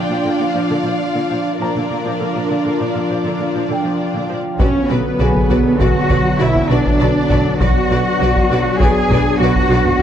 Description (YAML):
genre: cinematic, hybrid orchestral and electronic film score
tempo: 100 BPM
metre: 5/4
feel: straight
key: unclear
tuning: A4 = 440 Hz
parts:
  - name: rich symphonic violin section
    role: melody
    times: 0.0-10.0 s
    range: A#4 to G#5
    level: -25 LUFS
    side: left 4 dB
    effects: none
  - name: rich symphonic violin section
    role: second line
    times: 0.0-9.8 s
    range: E#4 to D5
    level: -27 LUFS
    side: left 2 dB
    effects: none
  - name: clear symphonic viola section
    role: accompaniment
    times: 0.0-10.0 s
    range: D3 to F#4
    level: -24 LUFS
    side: equal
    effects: none
  - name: airy breathy pad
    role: sustained chords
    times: 0.0-10.0 s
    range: D3 to E#5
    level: -20 LUFS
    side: right 1 dB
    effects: chorus
  - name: felt-muted upright piano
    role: texture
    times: 0.0-10.0 s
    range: G#4 to A#5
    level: -28 LUFS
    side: equal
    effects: tape echo
  - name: warm symphonic cello section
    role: bass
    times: 0.1-10.0 s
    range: A#2 to G#4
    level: -20 LUFS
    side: right 1 dB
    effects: none
  - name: warm French horn section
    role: sustained chords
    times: 4.6-10.0 s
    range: D3 to D4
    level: -24 LUFS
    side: left 4 dB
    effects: none
  - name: rich symphonic double bass section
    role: bass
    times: 4.6-10.0 s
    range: B1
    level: -19 LUFS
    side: right 2 dB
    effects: none
  - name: taiko ensemble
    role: drums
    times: 4.6-10.0 s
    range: none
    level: -20 LUFS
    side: equal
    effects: none
room: moderate scoring stage reverb, RT60 1.7 s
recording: dark, warm production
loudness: -14 LUFS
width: side -9 dB against mid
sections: 0.0-4.6 A section; 4.6-10.0 A section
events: none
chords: 0.0 A#; 4.6 Bm